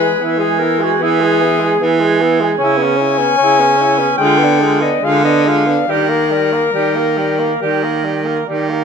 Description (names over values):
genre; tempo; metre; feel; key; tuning
classical, lyrical piece for single-reed quartet; 67-76 BPM; 4/4; rubato; unclear; A4 = 440 Hz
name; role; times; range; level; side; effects
clear clarinet; melody; 0.0-8.5 s; F#4 to G#5; -16 LUFS; left 9 dB; none
clear alto saxophone; second line; 0.0-8.8 s; C#4 to A#4; -19 LUFS; right 10 dB; none
mellow tenor saxophone; accompaniment; 0.0-8.8 s; G3 to C#4; -19 LUFS; left 3 dB; none
warm baritone saxophone; bass; 0.0-8.8 s; C#3 to E3; -16 LUFS; right 4 dB; none
room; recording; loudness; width
moderate recital hall reverb, RT60 1.5 s; close, detailed microphones; -12 LUFS; side -6 dB against mid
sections
0.0-8.8 A section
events
none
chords
0.0 E; 2.6 C#m7; 4.2 Ddim7; 5.9 D#